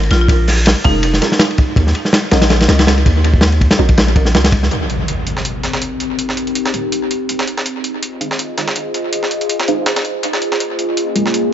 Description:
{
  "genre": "drum and bass, jungle",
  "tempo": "163 BPM",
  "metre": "4/4",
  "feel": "swing 55% on 16ths",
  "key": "C phrygian",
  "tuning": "A4 = 436 Hz",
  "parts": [
    { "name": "long sustained 808-style bass", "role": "bass", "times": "0.0-4.7 s", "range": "F1 to Eb2", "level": "-14 LUFS", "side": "equal", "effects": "none" },
    { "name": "crunchy breakbeat drum kit", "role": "drums", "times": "0.0-4.7 s", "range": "hi-hat, kick drum, ride cymbal, snare drum", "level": "-13 LUFS", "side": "equal", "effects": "tape echo" },
    { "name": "marimba with hard mallets", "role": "melody", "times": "0.1-1.1 s", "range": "Eb4 to F4", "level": "-22 LUFS", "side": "right 1 dB", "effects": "vintage 12-bit sampler grit, dub echo" },
    { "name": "filtered dub chord stab", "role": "stabs", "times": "0.8-11.3 s", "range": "Ab3 to F5", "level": "-23 LUFS", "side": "right 1 dB", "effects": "phaser, analog chorus, dub echo" },
    { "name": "warbly tape-like pad", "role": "sustained chords", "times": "5.4-11.5 s", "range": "Bb3 to Eb5", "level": "-19 LUFS", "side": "left 1 dB", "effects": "chorus, built-in reverb, phaser, vintage 12-bit sampler grit" },
    { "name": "breakbeat sampler-style drum kit", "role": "drums", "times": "4.7-11.4 s", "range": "hi-hat, snare drum", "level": "-20 LUFS", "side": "right 1 dB", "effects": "high-pass filter on hats, high-pass filter on snare, tape echo" },
    { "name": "impact", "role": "sound effects", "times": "4.7-6.2 s", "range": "none", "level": "-23 LUFS", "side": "equal", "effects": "none" }
  ],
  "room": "moderate echo chamber reverb, RT60 1.4 s",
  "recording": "echo-heavy mix, nothing above 7.7 kHz",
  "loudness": "-13 LUFS",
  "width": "side -10 dB against mid",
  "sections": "0.0-4.7 A section; 4.7-11.5 B section",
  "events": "impact 4.7-6.2; filter sweep on ambient pad 4.7-11.5; filter sweep on synth stab 4.7-11.5",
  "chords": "0.0 Bbm7; 1.8 Ebm7; 4.7 Cm7; 7.7 Fm7; 10.6 Bbm7",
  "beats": "| 0.30 0.66 1.03 1.40 | 1.77 2.14 2.50 2.87 | 3.24 3.61 3.98 4.34 | 4.71 5.08 5.45 5.82 | 6.19 6.55 6.92 7.29 | 7.66 8.03 8.39 8.76 | 9.13 9.50 9.87 10.23 | 10.60 10.97 11.34"
}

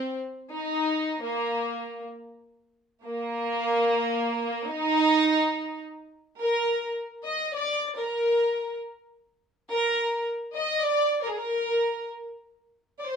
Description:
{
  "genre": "mexican folk",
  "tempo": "107 BPM",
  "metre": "3/4",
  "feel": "rubato",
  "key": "unclear",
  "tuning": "A4 = 440 Hz",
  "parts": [
    { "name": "warm studio violin section", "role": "solo", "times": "0.0-13.2 s", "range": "Bb3 to Eb5", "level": "-25 LUFS", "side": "equal", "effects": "none" }
  ],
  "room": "moderate studio reverb, RT60 0.7 s",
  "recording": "band playing live in one room",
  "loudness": "-24 LUFS",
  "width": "side -6 dB against mid",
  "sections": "0.0-6.4 A section; 6.4-13.2 A section",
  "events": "none",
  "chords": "none",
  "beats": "0.23 0.80 | 1.36 1.93 2.49 | 3.04 3.59 4.14 | 4.69 5.24 5.81 | 6.39 6.95 7.52 | 8.08 8.63 9.18 | 9.72 10.27 10.82 | 11.38 11.94 12.51 | 13.07"
}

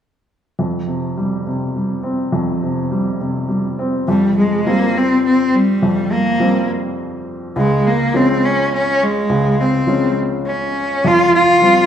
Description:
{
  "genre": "folk",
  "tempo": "104 BPM",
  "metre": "3/4",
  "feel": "straight",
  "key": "F minor",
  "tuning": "A4 = 439 Hz",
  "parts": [
    { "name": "warm baby grand piano", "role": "accompaniment", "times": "0.6-11.9 s", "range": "Db2 to Db4", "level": "-18 LUFS", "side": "equal", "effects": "none" },
    { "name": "rich cello", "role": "melody", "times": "4.1-11.9 s", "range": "G3 to F4", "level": "-14 LUFS", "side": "equal", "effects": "none" }
  ],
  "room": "wet recital hall reverb, RT60 1.6 s",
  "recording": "recorded in a church or concert hall",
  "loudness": "-14 LUFS",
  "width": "side -9 dB against mid",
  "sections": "0.6-4.1 A section; 4.1-11.9 B section",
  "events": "none",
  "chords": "0.6 Fsus2; 7.6 Db; 11.0 Fsus2",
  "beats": "| 0.59 1.17 1.75 | 2.33 2.91 3.49 | 4.07 4.66 5.24 | 5.82 6.40 6.97 | 7.55 8.13 8.71 | 9.29 9.87 10.45 | 11.03 11.61"
}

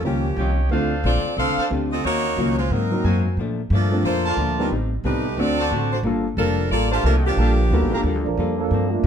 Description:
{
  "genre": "jazz, big band swing",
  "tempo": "180 BPM",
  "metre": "4/4",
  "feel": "swing 62% on 8ths",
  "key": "G minor",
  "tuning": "A4 = 438 Hz",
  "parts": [
    { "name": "clear saxophone section", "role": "melody", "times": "0.0-8.3 s", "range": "F3 to F5", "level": "-24 LUFS", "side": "equal", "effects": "none" },
    { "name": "archtop guitar, miked and amplified", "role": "accompaniment", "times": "0.0-9.1 s", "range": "G2 to A4", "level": "-27 LUFS", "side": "left 5 dB", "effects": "none" },
    { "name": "warm grand piano", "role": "accompaniment", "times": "0.0-8.2 s", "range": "F3 to Bb4", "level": "-26 LUFS", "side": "equal", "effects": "none" },
    { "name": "upright bass", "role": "bass", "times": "0.0-9.1 s", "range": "F1 to Bb2", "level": "-22 LUFS", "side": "equal", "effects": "none" },
    { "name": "clear trumpet section", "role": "stabs", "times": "0.4-8.0 s", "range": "D4 to Bb5", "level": "-28 LUFS", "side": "right 2 dB", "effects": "none" },
    { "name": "warm trombone section", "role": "second line", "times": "8.2-9.1 s", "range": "F3 to Bb4", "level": "-22 LUFS", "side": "right 6 dB", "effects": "none" }
  ],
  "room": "light reverb",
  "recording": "none",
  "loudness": "-18 LUFS",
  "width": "side -8 dB against mid",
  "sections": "0.0-8.7 A section",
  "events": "none",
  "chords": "0.0 Eb9; 0.7 Dm7; 2.0 Ebm7; 2.7 Ab9; 3.4 Bbmaj7; 4.7 Am7b5; 5.4 D7; 6.0 Gm9",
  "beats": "0.04 0.38 | 0.71 1.04 1.38 1.71 | 2.04 2.38 2.71 3.04 | 3.38 3.71 4.04 4.38 | 4.71 5.04 5.38 5.71 | 6.05 6.38 6.71 7.05 | 7.38 7.71 8.05 8.38 | 8.71 9.05"
}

